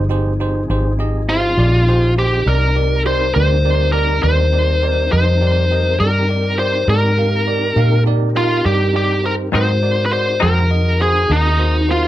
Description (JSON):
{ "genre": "slow blues", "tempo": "68 BPM (dotted quarters)", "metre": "12/8", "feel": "straight", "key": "C minor", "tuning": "A4 = 437 Hz", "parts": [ { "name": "bell-like tine electric piano", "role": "accompaniment", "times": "0.0-12.1 s", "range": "Eb4 to F5", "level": "-24 LUFS", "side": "moving between right 1 dB and right 14 dB", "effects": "auto-pan" }, { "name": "mellow tonewheel organ", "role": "sustained chords", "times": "0.0-12.1 s", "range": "F3 to Bb4", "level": "-26 LUFS", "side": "left 2 dB", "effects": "slow rotary speaker, chorus vibrato" }, { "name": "vintage muted fingered electric bass", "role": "bass", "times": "0.0-12.1 s", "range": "G1 to Bb2", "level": "-16 LUFS", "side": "equal", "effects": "none" }, { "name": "biting lead guitar", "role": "melody", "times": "1.3-12.1 s", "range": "Eb4 to C5", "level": "-17 LUFS", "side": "left 1 dB", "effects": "overdrive" }, { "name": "semi-hollow electric guitar", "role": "accompaniment", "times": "9.5-10.6 s", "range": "Ab2 to Eb4", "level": "-20 LUFS", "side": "left 5 dB", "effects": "tremolo" } ], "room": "light reverb", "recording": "lossy compression artefacts", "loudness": "-13 LUFS", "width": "side -14 dB against mid", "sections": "0.0-12.1 A section", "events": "none", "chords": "0.0 Fm7; 2.5 Cm7; 9.5 Ab7" }